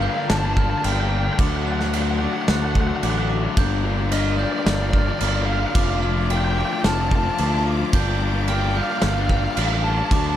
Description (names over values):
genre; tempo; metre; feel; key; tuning
post-rock; 110 BPM; 4/4; straight; G minor; A4 = 440 Hz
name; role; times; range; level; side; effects
bluesy overdriven lead guitar; melody; 0.0-10.3 s; D5 to A5; -27 LUFS; right 1 dB; distortion, tape echo
clear studio string section; sustained chords; 0.0-10.4 s; F4 to D6; -35 LUFS; right 2 dB; none
glockenspiel with hard plastic mallets; arpeggios; 0.0-10.4 s; D6 to G6; -32 LUFS; right 9 dB; tape echo
thick fuzz guitar; riff; 0.0-10.4 s; G2 to G4; -25 LUFS; left 8 dB; distortion
growling fingered electric bass; bass; 0.0-10.4 s; F1 to D2; -23 LUFS; equal; overdrive
loose indie drum kit; drums; 0.3-10.2 s; crash cymbal, kick drum, snare drum; -24 LUFS; right 1 dB; none
room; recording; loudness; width
small room ambience; none; -18 LUFS; side -11 dB against mid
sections
0.0-10.4 A section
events
none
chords
0.0 Gm7; 1.4 D; 3.6 Gm7; 5.8 Dm7/F; 7.9 Gm7